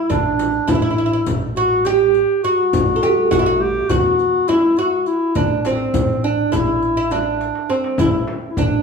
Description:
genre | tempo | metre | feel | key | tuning
Turkish makam ensemble | 205 BPM (eighths) | 9/8 | straight | A makam huseyni | A4 = 443 Hz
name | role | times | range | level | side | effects
mellow clarinet | melody | 0.0-8.8 s | C4 to G4 | -18 LUFS | left 2 dB | none
oud | second line | 0.0-8.8 s | C4 to A4 | -20 LUFS | right 6 dB | none
upright bass | bass | 0.1-8.8 s | A1 to E2 | -26 LUFS | equal | none
darbuka | percussion | 0.1-8.7 s | none | -28 LUFS | left 3 dB | none
frame drum | percussion | 0.1-8.7 s | none | -23 LUFS | left 2 dB | none
riq | percussion | 0.1-8.7 s | none | -36 LUFS | left 5 dB | none
room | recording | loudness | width
wet large studio reverb, RT60 1.1 s | band playing live in one room | -15 LUFS | side -5 dB against mid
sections
0.0-8.8 A section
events
drum fill 7.4-8.0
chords
none

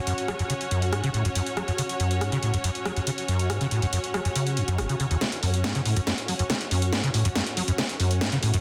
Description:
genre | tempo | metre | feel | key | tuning
driving peak-time techno | 140 BPM | 4/4 | straight | unclear | A4 = 437 Hz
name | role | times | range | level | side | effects
rich symphonic string section | texture | 0.0-8.6 s | C#4 to F#5 | -34 LUFS | equal | sidechain pumping
acid bass, saw | riff | 0.1-8.6 s | F#1 to F#3 | -28 LUFS | equal | ensemble chorus, sidechain pumping, digital delay
techno drum kit | drums | 0.1-8.6 s | hi-hat, rim click, snare drum | -32 LUFS | equal | soft clipping on snare, high-pass filter on snare, high-pass filter on hats, high-pass filter on room
electronic kick drum | drums | 5.2-8.3 s | none | -40 LUFS | equal | none
room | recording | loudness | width
moderate digital room reverb, RT60 1.0 s | dense, heavily limited modern master | -26 LUFS | mono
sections
0.0-5.2 A section; 5.2-8.6 B section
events
build-up 5.2-8.6; drum fill 5.2-8.6; filter sweep on acid bass 5.2-8.6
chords
0.0 F#5

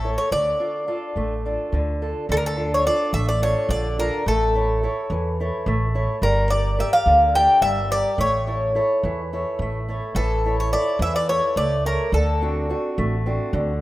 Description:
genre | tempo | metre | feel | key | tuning
greek folk, Greek bouzouki band | 213 BPM (eighths) | 7/8 | straight | D harmonic minor | A4 = 440 Hz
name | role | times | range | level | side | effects
Greek bouzouki | melody | 0.0-13.2 s | A4 to G5 | -21 LUFS | equal | none
fingerpicked old ladder-braced acoustic guitar | accompaniment | 0.0-13.8 s | D3 to D5 | -26 LUFS | right 1 dB | none
upright bass | bass | 0.0-13.8 s | G1 to E2 | -24 LUFS | equal | none
room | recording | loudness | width
moderate plate reverb, RT60 2.5 s | rough home demo mix | -19 LUFS | side -16 dB against mid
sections
0.0-2.3 A section; 2.3-13.8 B section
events
none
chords
0.3 Dm; 4.3 A; 6.2 Gm; 8.2 A; 12.1 D7

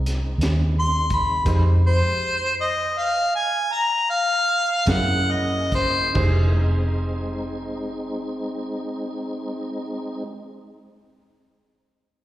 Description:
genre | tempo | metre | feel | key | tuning
slow blues | 45-57 BPM (dotted quarters) | 12/8 | straight | F minor | A4 = 440 Hz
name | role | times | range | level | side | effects
clear upright piano | accompaniment | 0.0-9.8 s | Db4 to C5 | -31 LUFS | right 2 dB | slapback echo
tonewheel organ | sustained chords | 0.0-10.2 s | E3 to Ab4 | -31 LUFS | equal | slow rotary speaker, overdrive, chorus vibrato
vintage muted fingered electric bass | bass | 0.0-9.8 s | F1 to Gb2 | -21 LUFS | equal | none
crunchy breakbeat drum kit | drums | 0.1-6.4 s | crash cymbal, hi-hat, kick drum, snare drum | -27 LUFS | equal | none
mellow harmonica | melody | 0.8-6.2 s | C5 to C6 | -21 LUFS | left 1 dB | slapback echo, analog delay
room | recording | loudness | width
light reverb, small room ambience | live gig heard through the venue's PA, recital hall reverb | -20 LUFS | side -14 dB against mid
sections
0.0-6.2 A section; 6.2-11.5 B section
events
harmonica solo 0.0-6.2; slowing down 0.1-6.2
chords
0.0 Fm7; 4.9 Gb7; 6.2 Fm7

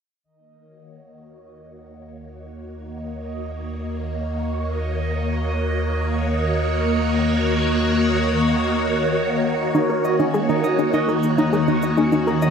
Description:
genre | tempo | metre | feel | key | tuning
ambient, sequencer-driven space music | 101 BPM | 4/4 | straight | Eb minor | A4 = 441 Hz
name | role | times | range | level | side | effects
phased string machine | sustained chords | 0.2-12.5 s | Eb3 to Db5 | -21 LUFS | equal | ensemble chorus, phaser
round analog bass | bass | 0.2-12.5 s | Eb2 | -27 LUFS | equal | none
bubbling stepped-filter texture | texture | 1.6-12.5 s | Eb5 | -32 LUFS | right 5 dB | chorus, built-in reverb
concert harp | arpeggios | 9.7-12.5 s | Db4 to Eb5 | -24 LUFS | moving between left 4 dB and right 3 dB | auto-pan, ping-pong delay
analog pluck | riff | 9.7-12.4 s | Eb4 to Bb4 | -23 LUFS | equal | chorus, ping-pong delay
electronic shaker and toms | percussion | 9.7-12.5 s | none | -44 LUFS | left 4 dB | overdrive, ping-pong delay
room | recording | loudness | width
wet plate reverb, RT60 3.3 s | none | -18 LUFS | side -6 dB against mid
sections
0.2-9.7 A section; 9.7-12.5 B section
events
fade-in on string machine 0.2-9.7; fade-in on analog synth bass 0.2-9.7; fade-in on synth texture 0.2-9.7; filter sweep on synth arpeggio sound 9.7-12.5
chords
0.2 Ebm7

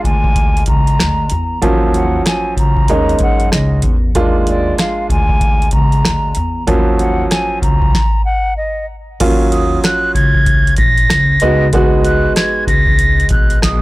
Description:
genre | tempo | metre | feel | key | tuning
hip hop, boom-bap hip-hop | 95 BPM | 4/4 | swing 62% on 16ths | Eb minor | A4 = 440 Hz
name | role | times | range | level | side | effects
hollow concert flute | melody | 0.0-13.8 s | D5 to Bb6 | -18 LUFS | equal | high-pass filter, low-pass filter
warm upright piano | accompaniment | 0.0-13.8 s | F3 to Gb4 | -17 LUFS | right 2 dB | cassette tape, high-pass filter, low-pass filter
upright bass | bass | 0.0-13.8 s | Bb1 to Gb2 | -17 LUFS | equal | transformer saturation
booming analog drum machine | drums | 0.0-13.8 s | crash cymbal, hi-hat, kick drum, rim click, snare drum | -15 LUFS | equal | none
room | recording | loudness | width
little or no reverb | blown-out, overdriven recording, overdrive | -11 LUFS | side -19 dB against mid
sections
0.0-9.2 A section; 9.2-13.8 B section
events
stop 7.9-9.2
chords
0.0 Bb7; 1.6 Ebm7; 2.9 Gb6/Eb; 4.2 Bb7; 6.7 Ebm7; 7.9 N.C.; 9.2 Ebm7; 11.4 Db7sus4

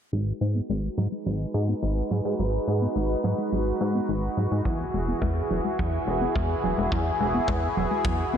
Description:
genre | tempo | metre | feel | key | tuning
synthwave | 106 BPM | 4/4 | straight | G# minor | A4 = 441 Hz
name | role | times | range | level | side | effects
soft supersaw | sustained chords | 0.1-8.4 s | E3 to B4 | -28 LUFS | right 1 dB | phaser, sidechain pumping, low-pass filter
warbly dusty pluck | arpeggios | 0.1-8.4 s | F#3 to B3 | -32 LUFS | left 1 dB | chorus, ping-pong delay
chorused synth bass | bass | 0.1-8.4 s | E1 to G#2 | -26 LUFS | equal | none
kick drum | drums | 4.7-8.2 s | none | -31 LUFS | equal | none
room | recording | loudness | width
light reverb, small room ambience | low-pass filter | -24 LUFS | side -8 dB against mid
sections
0.1-8.4 A section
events
filter sweep on analog synth bass 0.1-8.4; filter sweep on supersaw synth 0.1-8.4; filter sweep on synth arpeggio sound 0.1-8.4; filter sweep 0.1-8.4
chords
0.1 G#m7; 4.7 Eadd9

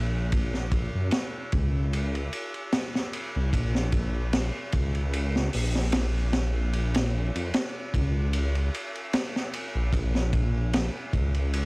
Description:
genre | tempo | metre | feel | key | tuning
trip hop | 75 BPM | 4/4 | swing 54% on 16ths | Bb minor | A4 = 441 Hz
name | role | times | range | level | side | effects
dark detuned saw bass | bass | 0.0-11.7 s | Bb1 to Gb2 | -26 LUFS | equal | transformer saturation
crunchy breakbeat drum kit | drums | 0.3-11.7 s | hi-hat, kick drum, ride cymbal, snare drum | -28 LUFS | equal | none
room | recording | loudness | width
little or no reverb | dry, gritty hardware recording, vinyl crackle | -25 LUFS | side -30 dB against mid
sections
0.0-11.7 A section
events
none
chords
none

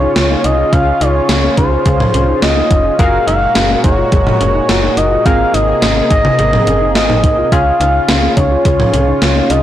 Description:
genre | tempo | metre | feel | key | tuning
synth-pop | 106 BPM | 4/4 | straight | Db major | A4 = 440 Hz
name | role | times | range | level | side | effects
expressive synth lead | melody | 0.0-9.6 s | C5 to F5 | -14 LUFS | equal | chorus, tape echo
funky polysynth comp | accompaniment | 0.0-9.6 s | C4 to Bb4 | -20 LUFS | left 1 dB | chorus
lush unison pad | sustained chords | 0.0-9.6 s | Bb2 to Ab4 | -21 LUFS | equal | chorus
soft round pluck | arpeggios | 0.0-9.6 s | Db4 to Ab4 | -22 LUFS | left 2 dB | chorus, tape echo
slap-like FM bass | bass | 0.0-9.6 s | F1 to Db2 | -17 LUFS | equal | transformer saturation
gated 80s digital drum machine | drums | 0.2-9.6 s | hi-hat, kick drum, snare drum, toms | -15 LUFS | equal | gated reverb, gated reverb snare
room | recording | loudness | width
moderate lush hall reverb, RT60 2.1 s | blown-out, overdriven recording, overdrive | -10 LUFS | side -12 dB against mid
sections
0.0-9.6 A section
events
none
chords
0.0 Dbmaj7; 3.0 Gbadd9; 5.3 Abadd9; 7.5 Dbmaj7

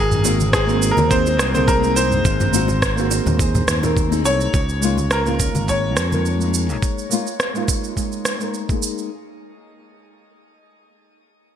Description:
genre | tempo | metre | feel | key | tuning
sunset chillout | 105 BPM | 4/4 | swing 54% on 16ths | Db major | A4 = 440 Hz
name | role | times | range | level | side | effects
bright concert grand piano | melody | 0.0-8.5 s | Ab4 to Db5 | -23 LUFS | equal | digital delay, shimmer reverb
lush unison pad | sustained chords | 0.0-4.5 s | Ab3 to C4 | -28 LUFS | equal | chorus, shimmer reverb
modern bright fingered electric bass | bass | 0.0-6.8 s | Ab1 to F2 | -21 LUFS | equal | none
smooth R&B drum kit | drums | 0.1-9.1 s | rim click, shaker, toms | -23 LUFS | right 2 dB | gated reverb
nylon-string guitar | accompaniment | 0.2-9.1 s | Ab3 to Bb4 | -24 LUFS | moving between left 6 dB and right 5 dB | auto-pan, low-pass filter, digital delay, shimmer reverb
bongos and congas | percussion | 0.2-6.2 s | none | -26 LUFS | left 2 dB | none
electronic kick drum | drums | 0.5-8.8 s | none | -22 LUFS | equal | none
room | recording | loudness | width
moderate plate reverb, RT60 1.9 s | bright 1980s-style digital production | -16 LUFS | side -9 dB against mid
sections
0.0-4.5 A section; 4.5-9.1 B section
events
filter sweep on nylon-string guitar 4.5-9.1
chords
0.0 Ab7; 4.5 Db6

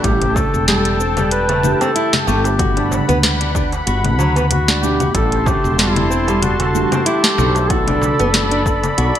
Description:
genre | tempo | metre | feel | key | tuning
organic downtempo | 94 BPM | 4/4 | swing 55% on 16ths | A dorian | A4 = 440 Hz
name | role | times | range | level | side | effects
mellow duduk | melody | 0.0-9.2 s | E4 to B4 | -20 LUFS | left 1 dB | ping-pong delay
felt-muted upright piano | accompaniment | 0.0-9.2 s | B2 to G4 | -25 LUFS | right 1 dB | ensemble chorus, sidechain pumping, digital delay
warm analog pad | sustained chords | 0.0-9.2 s | A4 to C6 | -23 LUFS | left 1 dB | chorus, sidechain pumping
nylon-string guitar | arpeggios | 0.0-9.1 s | F#3 to F#4 | -22 LUFS | equal | digital delay
woody fretless electric bass | bass | 0.0-9.1 s | E1 to D2 | -19 LUFS | equal | wide subtle chorus
afro-pop drum kit | drums | 0.0-9.2 s | cabasa, congas, hi-hat, snare drum | -19 LUFS | left 2 dB | small room ambience, gated reverb
electronic kick drum | drums | 0.0-8.8 s | none | -21 LUFS | equal | overdrive, small room ambience
darbuka | percussion | 0.2-8.9 s | none | -27 LUFS | right 3 dB | none
room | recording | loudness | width
light reverb, small room reverb | bright 1980s-style digital production | -13 LUFS | side -10 dB against mid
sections
0.0-9.2 A section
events
none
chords
0.0 A7(no3); 2.6 Gmaj7; 5.1 Am7; 7.7 Bm7

